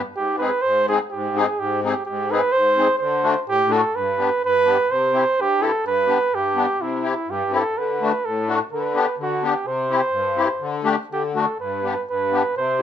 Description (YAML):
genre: alpine folk, alpine dance band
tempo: 126 BPM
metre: 2/4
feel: rubato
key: G major from 4.0 s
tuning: A4 = 440 Hz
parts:
  - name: mellow flugelhorn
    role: melody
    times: 0.0-12.8 s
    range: E4 to C5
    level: -20 LUFS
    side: right 2 dB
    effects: plate reverb
  - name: musette accordion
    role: accompaniment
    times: 0.2-12.8 s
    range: G2 to Ab4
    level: -23 LUFS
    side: left 5 dB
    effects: none
room: moderate small room reverb, RT60 0.5 s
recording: none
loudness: -18 LUFS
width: side -9 dB against mid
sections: 0.0-4.0 A section; 4.0-12.8 B section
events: none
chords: 0.1 Ab; 3.0 D7; 4.0 G; 4.9 C; 5.8 G; 6.8 C; 7.8 D; 8.7 G/D; 9.7 C; 10.6 Dsus4; 11.1 D; 11.6 G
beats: | 0.14 0.63 | 1.11 1.58 | 2.06 2.53 | 3.00 3.47 | 3.96 4.43 | 4.91 5.38 | 5.85 6.32 | 6.79 7.27 | 7.76 8.25 | 8.73 9.20 | 9.68 10.15 | 10.62 11.10 | 11.59 12.07 | 12.55